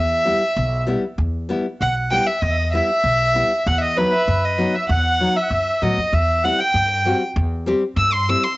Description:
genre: klezmer.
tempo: 97 BPM.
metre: 2/4.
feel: straight.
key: E harmonic minor.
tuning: A4 = 440 Hz.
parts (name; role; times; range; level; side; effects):
warm violin; melody; 0.0-8.6 s; B4 to E6; -19 LUFS; equal; cassette tape.
accordion; second line; 0.0-8.6 s; B4 to E6; -24 LUFS; right 2 dB; none.
upright bass; bass; 0.0-8.3 s; B1 to A2; -22 LUFS; equal; none.
nylon-string guitar; accompaniment; 0.3-8.4 s; F#3 to G4; -22 LUFS; left 2 dB; none.
room: light reverb, small room reverb.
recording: home recording on cassette, nothing above 7.9 kHz.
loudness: -17 LUFS.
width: side -20 dB against mid.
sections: 0.0-1.2 A section; 1.2-8.6 B section.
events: violin solo 1.2-8.6.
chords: 0.0 Em; 3.7 B/E; 6.1 C/E.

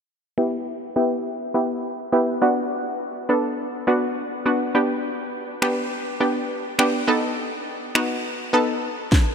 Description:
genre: dance-pop.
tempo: 103 BPM.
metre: 4/4.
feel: straight.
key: B minor.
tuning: A4 = 440 Hz.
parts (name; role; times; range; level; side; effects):
analog pluck; accompaniment; 0.4-8.8 s; B3 to A4; -21 LUFS; equal; chorus, sidechain pumping, low-pass filter.
house drum kit; drums; 5.6-9.3 s; finger snaps, kick drum, snare drum; -25 LUFS; equal; overdrive.
room: wet huge ambient reverb, RT60 4.9 s.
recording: dreamy mix soaked in reverb.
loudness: -21 LUFS.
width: side -6 dB against mid.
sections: 0.4-9.3 A section.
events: filter sweep on synth pluck 0.4-9.3.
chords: 0.4 Em; 2.4 Bm; 4.7 G; 7.1 B7.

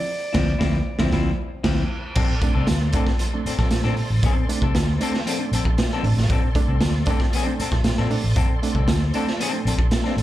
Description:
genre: funk.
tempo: 116 BPM.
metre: 4/4.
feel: straight.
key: unclear.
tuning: A4 = 441 Hz.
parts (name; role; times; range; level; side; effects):
mellow clarinet; melody; 0.0-1.6 s; D5; -30 LUFS; right 2 dB; slapback echo.
reed electric piano; stabs; 0.0-10.2 s; Bb2 to E4; -29 LUFS; right 5 dB; fast tremolo, slapback echo.
semi-hollow electric guitar; accompaniment; 0.3-10.2 s; F3 to A4; -28 LUFS; left 8 dB; slapback echo.
vintage muted fingered electric bass; bass; 0.3-10.2 s; A1 to Bb2; -22 LUFS; equal; none.
raw garage drum kit; drums; 0.3-10.2 s; crash cymbal, hi-hat, kick drum, snare drum; -22 LUFS; equal; none.
bright tonewheel organ; sustained chords; 2.2-10.2 s; A4 to C6; -34 LUFS; right 1 dB; fast rotary speaker, overdrive, chorus vibrato.
room: studio reverb.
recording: live gig heard through the venue's PA, club reverb.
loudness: -19 LUFS.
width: side -14 dB against mid.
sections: 0.0-2.2 A section; 2.2-10.2 B section.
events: band accent 0.1-2.2.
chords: 0.0 Dm9; 2.2 Bbmaj9.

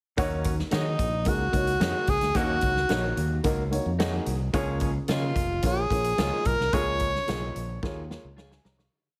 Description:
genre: uptempo 1960s-style soul.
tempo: 110 BPM.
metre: 4/4.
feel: straight.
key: Eb minor.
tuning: A4 = 439 Hz.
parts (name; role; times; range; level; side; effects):
mellow horn section; second line; 0.2-7.1 s; Eb3 to Ab4; -37 LUFS; equal; none.
dark upright piano; accompaniment; 0.2-9.0 s; Db3 to Db6; -34 LUFS; equal; none.
modern bright fingered electric bass; bass; 0.2-8.9 s; F1 to Eb3; -32 LUFS; equal; none.
swinging big-band drum kit; drums; 0.2-8.9 s; hi-hat, kick drum, snare drum; -33 LUFS; equal; none.
clear tenor saxophone; melody; 0.7-7.8 s; Eb4 to Db5; -30 LUFS; equal; none.
electric guitar through a small old amp; stabs; 0.7-8.5 s; Eb4 to Db5; -41 LUFS; equal; none.
room: studio reverb.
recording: heavily compressed radio sound.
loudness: -26 LUFS.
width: mono.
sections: 0.2-8.9 verse.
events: fade-out 6.7-8.9; drum fill 7.8-8.9.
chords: 0.2 Ebm7; 4.5 Bbm7.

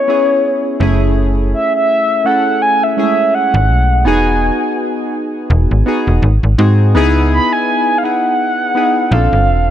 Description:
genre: contemporary R&B.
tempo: 83 BPM.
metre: 4/4.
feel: swing 58% on 16ths.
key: unclear.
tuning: A4 = 440 Hz.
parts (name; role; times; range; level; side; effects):
mellow horn-like synth lead; melody; 0.0-9.7 s; C#5 to B5; -14 LUFS; equal; chorus, ping-pong delay.
warm analog keys; accompaniment; 0.0-9.7 s; G#3 to A4; -16 LUFS; equal; chorus.
slap-like FM bass; bass; 0.8-9.7 s; E1 to G#2; -12 LUFS; equal; none.
room: little or no reverb.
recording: none.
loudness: -11 LUFS.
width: side -11 dB against mid.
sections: 0.0-9.7 A section.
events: none.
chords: 0.0 Amaj7 (rootless); 0.8 F#m9; 4.1 Emaj7; 6.2 G#7; 6.9 C#m7; 9.1 A#maj7.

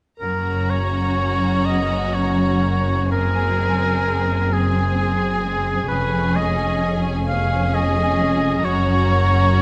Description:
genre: classical, slow romantic movement for symphony orchestra.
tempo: 43 BPM (dotted quarters).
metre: 6/8.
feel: uneven beats, rubato.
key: F# major.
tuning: A4 = 440 Hz.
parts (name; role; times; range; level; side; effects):
rich studio violin section; melody; 0.2-9.6 s; G#5 to A#5; -34 LUFS; equal; none.
rich studio violin section; second line; 0.2-9.6 s; F#4 to G#4; -33 LUFS; equal; none.
warm oboe; second line; 0.2-9.6 s; G#4 to E#5; -25 LUFS; equal; none.
rich studio viola section; accompaniment; 0.2-9.6 s; B#3 to C#4; -30 LUFS; equal; none.
concert harp; arpeggios; 0.2-9.6 s; E#2 to C#4; -28 LUFS; equal; none.
rich studio cello section; bass; 0.2-9.6 s; E#2 to F#2; -27 LUFS; equal; none.
rich studio double bass section; bass; 0.2-9.6 s; E#1 to F#1; -26 LUFS; equal; none.
room: moderate scoring stage reverb, RT60 1.7 s.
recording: none.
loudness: -20 LUFS.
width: mono.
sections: 0.2-9.6 A section.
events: none.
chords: 0.2 F#; 3.1 G#7/F#; 5.9 C#7/E#; 8.6 F#.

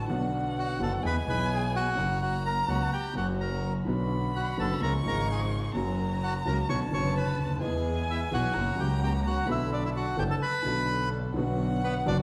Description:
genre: tango.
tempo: 128 BPM.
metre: 4/4.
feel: rubato.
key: B minor.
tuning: A4 = 441 Hz.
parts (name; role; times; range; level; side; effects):
warm violin; second line; 0.0-12.2 s; F#5 to C#6; -39 LUFS; equal; none.
warm upright piano; accompaniment; 0.0-12.2 s; F#1 to G#4; -34 LUFS; equal; none.
dark studio string section; stabs; 0.0-12.2 s; A#3 to B4; -42 LUFS; equal; none.
rich double bass; bass; 0.0-12.2 s; F#1 to E2; -33 LUFS; equal; none.
bandoneon; melody; 0.6-12.2 s; B3 to C#6; -34 LUFS; equal; none.
room: wet large studio reverb, RT60 1.4 s.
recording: heard from further back in the room.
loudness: -29 LUFS.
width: mono.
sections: 0.0-11.4 A section.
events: none.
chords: 0.1 Bm; 1.0 E; 2.0 F#; 3.9 Bm; 4.8 C#; 5.8 F#; 6.7 Bmadd9; 7.6 E; 8.5 F#; 9.5 Bm7; 11.4 Bm.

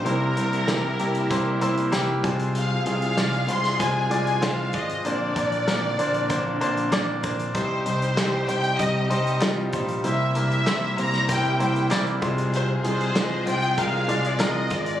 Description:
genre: piano-driven pop.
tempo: 96 BPM.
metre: 4/4.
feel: straight.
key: unclear.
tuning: A4 = 440 Hz.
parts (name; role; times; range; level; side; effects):
rich studio violin section; melody; 0.0-15.0 s; Bb4 to C6; -27 LUFS; equal; plate reverb.
clear baby grand piano; accompaniment; 0.0-15.0 s; Bb2 to Ab5; -26 LUFS; left 1 dB; plate reverb.
warm studio string section; sustained chords; 0.0-15.0 s; C3 to Ab4; -33 LUFS; equal; plate reverb.
picked electric bass; bass; 0.1-15.0 s; Ab1 to C2; -27 LUFS; equal; none.
natural country drum kit; drums; 0.1-15.0 s; hi-hat, kick drum, snare drum; -29 LUFS; equal; none.
group handclap; percussion; 8.2-14.5 s; none; -34 LUFS; right 3 dB; none.
room: moderate studio reverb, RT60 0.7 s.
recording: recorded on a phone in the room, studio reverb.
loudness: -21 LUFS.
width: side -11 dB against mid.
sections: 0.0-15.0 A section.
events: grand piano fill 1.6-2.6.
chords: 0.1 C7; 2.2 Fm/C; 5.1 Bbadd9; 7.5 Cm; 10.0 C7; 12.2 Fm/C.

